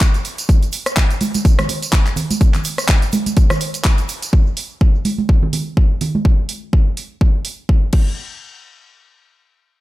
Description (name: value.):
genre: house.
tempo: 125 BPM.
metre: 4/4.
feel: swing 56% on 16ths.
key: none.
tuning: none.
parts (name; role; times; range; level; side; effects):
electronic kick drum; drums; 0.0-8.0 s; none; -13 LUFS; equal; none.
house drum kit; drums; 0.0-8.0 s; crash cymbal, handclaps, hi-hat, rim click, tambourine; -22 LUFS; equal; sidechain pumping on hats, sidechain pumping on perc, sidechain pumping on cymbals.
egg shaker and congas; percussion; 0.0-6.2 s; none; -22 LUFS; right 3 dB; sidechain pumping on perc, low-pass filter on perc.
room: little or no reverb.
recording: none.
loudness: -14 LUFS.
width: side -17 dB against mid.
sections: 0.0-4.3 A section; 4.3-8.2 B section; 8.2-9.8 C section.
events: drop 0.0-4.3.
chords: none.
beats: 0.01 | 0.49 0.97 1.45 1.93 | 2.41 2.89 3.37 3.85 | 4.33 4.81 5.29 5.77 | 6.25 6.73 7.21 7.69.